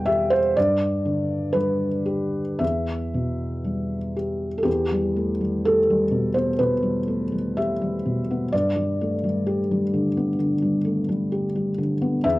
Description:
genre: neoclassical minimalist piano.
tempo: 55-65 BPM.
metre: 4/4.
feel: rubato.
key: E minor.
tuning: A4 = 442 Hz.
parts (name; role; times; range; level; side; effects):
felt-muted upright piano; solo; 0.0-12.4 s; E2 to G5; -21 LUFS; equal; cassette tape.
room: moderate studio reverb, RT60 0.6 s.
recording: home recording on cassette.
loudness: -21 LUFS.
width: side -18 dB against mid.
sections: 0.0-4.7 A section; 4.7-12.4 B section.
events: none.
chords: 0.0 Em; 0.6 G; 2.6 Em; 8.5 G.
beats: | 0.57 1.55 2.62 3.65 | 4.67 5.64 6.58 7.57 | 8.52 9.46 10.38 11.31 | 12.25.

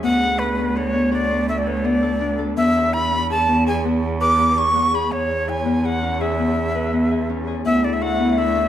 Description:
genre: contemporary instrumental, chamber music in an uneven meter.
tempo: 165 BPM.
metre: 7/4.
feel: straight.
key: unclear.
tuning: A4 = 436 Hz.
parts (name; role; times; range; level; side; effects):
breathy bright jazz flute; melody; 0.0-8.7 s; B4 to D6; -21 LUFS; equal; none.
Celtic harp; arpeggios; 0.0-8.7 s; B3 to B4; -21 LUFS; left 2 dB; none.
rich cello; bass; 0.0-8.7 s; D2 to E2; -25 LUFS; right 3 dB; none.
warm French horn; second line; 7.6-8.7 s; E4; -23 LUFS; left 7 dB; none.
room: wet recital hall reverb, RT60 1.4 s.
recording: none.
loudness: -17 LUFS.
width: side -11 dB against mid.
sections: 0.0-8.7 A section.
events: none.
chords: 0.0 D6; 2.6 E; 5.1 C#m7/E; 7.6 D6.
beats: | 0.03 0.39 0.75 1.12 1.48 1.84 2.21 | 2.57 2.93 3.29 3.66 4.02 4.38 4.75 | 5.11 5.47 5.83 6.20 6.56 6.92 7.29 | 7.65 8.01 8.37.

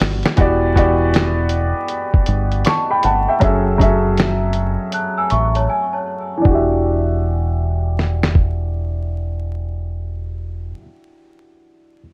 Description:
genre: lo-fi hip hop.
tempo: 79 BPM.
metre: 4/4.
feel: swing 64% on 16ths.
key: E dorian.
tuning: A4 = 443 Hz.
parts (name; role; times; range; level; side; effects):
bright upright piano; accompaniment; 0.0-12.0 s; E3 to C#6; -21 LUFS; equal; cassette tape, low-pass filter.
deep dub fingered electric bass; bass; 0.0-10.7 s; E1 to A1; -22 LUFS; equal; none.
lo-fi sampler-style drum kit; drums; 0.0-8.6 s; hi-hat, kick drum, snare drum; -19 LUFS; equal; none.
large celesta; second line; 4.9-6.4 s; C#5 to F#6; -24 LUFS; equal; low-pass filter, tape echo.
room: moderate studio reverb, RT60 0.6 s.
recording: vinyl crackle.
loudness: -18 LUFS.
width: mono.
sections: 0.4-6.5 A section; 6.5-9.5 B section.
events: drum fill 0.0-0.4; filter sweep on upright piano 0.4-6.5; break 5.7-6.5.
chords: 0.4 Em9; 3.4 F#m9; 6.5 Em9.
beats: | 0.38 1.14 1.90 2.65 | 3.42 4.17 4.93 5.69 | 6.45 7.21 7.97 8.73.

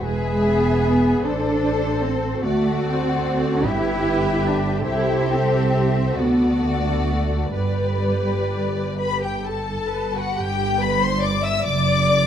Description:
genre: classical, slow romantic movement for string orchestra.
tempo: 41-51 BPM (dotted quarters).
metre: 6/8.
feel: rubato.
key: G major.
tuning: A4 = 440 Hz.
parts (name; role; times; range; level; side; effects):
rich symphonic violin section; melody; 0.0-12.3 s; C5 to E6; -28 LUFS; left 6 dB; none.
warm symphonic violin section; second line; 0.0-12.3 s; F#4 to E5; -26 LUFS; left 3 dB; none.
warm studio viola section; accompaniment; 0.0-12.3 s; F#4 to D5; -27 LUFS; left 1 dB; none.
warm studio double bass section; bass; 0.0-12.3 s; E1 to D2; -24 LUFS; right 2 dB; none.
warm symphonic cello section; bass; 0.0-12.3 s; F#2 to E4; -24 LUFS; right 2 dB; none.
room: moderate recital hall reverb, RT60 1.4 s.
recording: dark, warm production.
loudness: -18 LUFS.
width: side -9 dB against mid.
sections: 0.0-10.4 A section; 10.4-12.3 A section.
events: none.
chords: 0.0 E; 1.3 Am; 2.4 D7; 3.7 G; 4.9 C; 6.2 D; 7.6 G; 10.4 Gadd11; 11.7 D/F#.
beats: | 0.03 1.25 | 2.44 3.66 | 4.86 6.17 | 7.55 8.99 | 10.38 11.67.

